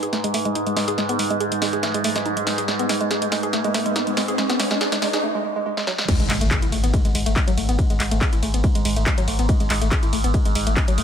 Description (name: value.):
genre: driving peak-time techno.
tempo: 141 BPM.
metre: 4/4.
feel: straight.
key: G# phrygian.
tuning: A4 = 440 Hz.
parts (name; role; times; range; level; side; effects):
woody wave-folded pluck; riff; 0.0-11.0 s; F#3 to G#4; -25 LUFS; right 1 dB; chorus, tube saturation, sidechain pumping, dub echo.
overtone-sweeping drone; drone; 0.0-11.0 s; G#2; -28 LUFS; right 2 dB; chorus, built-in reverb, sidechain pumping.
punchy analog drum machine; drums; 0.0-11.0 s; crash cymbal, handclaps, hi-hat, ride cymbal, snare drum; -26 LUFS; equal; sidechain pumping on hats, high-pass filter on hats, high-pass filter on snare, sidechain pumping on cymbals, high-pass filter on cymbals.
riser and impact; sound effects; 0.0-7.8 s; none; -29 LUFS; equal; none.
airy breathy pad; texture; 0.0-5.2 s; D#4 to G#5; -30 LUFS; right 2 dB; chorus, sidechain pumping.
electronic kick drum; drums; 6.1-10.9 s; none; -21 LUFS; left 1 dB; none.
saturated sub bass; bass; 6.2-11.0 s; G#1; -23 LUFS; left 1 dB; tube saturation, sidechain pumping, low-pass filter.
room: light reverb.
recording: high-pass filter.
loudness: -18 LUFS.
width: side -8 dB against mid.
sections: 0.0-6.1 A section; 6.1-11.0 B section.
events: build-up 0.0-6.1; drum fill 0.0-5.2, 5.8-6.1; riser 0.0-5.2; break 5.2-6.1; drop 6.1-11.0; impact 6.1-7.8.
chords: 0.0 G#m; 6.1 N.C..